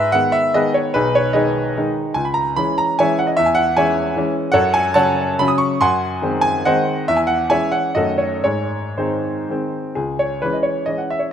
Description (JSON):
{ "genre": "classical, romantic triple-time dance for piano with dotted rhythms", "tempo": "105-160 BPM", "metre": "3/4", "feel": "rubato", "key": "C# minor from 4.5 s", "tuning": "A4 = 439 Hz", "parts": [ { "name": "clear grand piano", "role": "solo", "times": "0.0-11.3 s", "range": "B1 to D#6", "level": "-16 LUFS", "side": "equal", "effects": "none" } ], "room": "moderate recital hall reverb, RT60 1.7 s", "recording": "none", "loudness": "-16 LUFS", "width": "side -8 dB against mid", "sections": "0.0-10.0 A section; 10.0-11.3 B section", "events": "none", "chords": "0.0 G#m; 1.0 G#m/B; 2.2 C#m; 3.4 C#m/E; 4.5 F#m; 5.8 G#7/F#; 7.1 C#m/E; 8.0 D#m7b5/F#; 8.4 G#; 10.0 C#m", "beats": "0.14 0.56 | 0.96 1.37 1.78 | 2.17 2.57 2.98 | 3.37 3.76 4.17 | 4.54 4.96 5.39 | 5.80 6.22 6.66 | 7.07 7.49 7.95 | 8.43 8.97 9.50 | 9.98 10.44 10.89" }